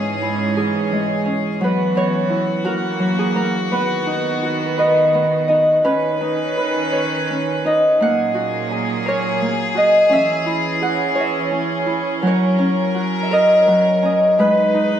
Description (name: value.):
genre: children's music, lullaby.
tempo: 57 BPM (dotted quarters).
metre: 6/8.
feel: rubato.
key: B major.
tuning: A4 = 440 Hz.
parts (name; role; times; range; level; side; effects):
Celtic harp; melody; 0.0-15.0 s; F#3 to F#5; -17 LUFS; equal; none.
rich chamber string section; sustained chords; 0.0-15.0 s; G#2 to B4; -21 LUFS; right 2 dB; none.
room: wet large studio reverb, RT60 1.3 s.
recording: band playing live in one room.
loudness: -15 LUFS.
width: side -9 dB against mid.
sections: 0.0-5.9 A section; 5.9-15.0 B section.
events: none.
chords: 0.0 C#m/G#; 1.6 F#7sus4; 2.7 F#7; 3.7 B; 5.9 Badd9; 8.0 F#add9/A#; 10.1 C#m; 12.2 F#; 14.4 G#m.